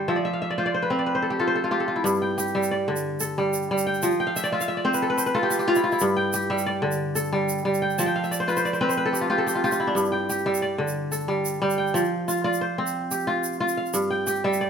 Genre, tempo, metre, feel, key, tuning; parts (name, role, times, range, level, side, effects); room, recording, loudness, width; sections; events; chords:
west african traditional, West African string and xylophone music; 121 BPM (dotted quarters); 12/8; straight; G mixolydian; A4 = 440 Hz
kora; arpeggios; 0.0-14.7 s; G2 to A5; -22 LUFS; equal
egg shaker; percussion; 2.1-14.6 s; -33 LUFS; right 4 dB
moderate recital hall reverb, RT60 1.4 s; close, detailed microphones; -22 LUFS; side -7 dB against mid
0.0-2.1 A section; 2.1-14.7 B section
kora fill 0.1-2.1, 4.2-6.0, 8.0-10.0
0.1 F5; 2.1 G5; 4.0 F5; 6.0 G5; 8.0 F5; 10.0 G5; 12.0 F5; 13.9 G5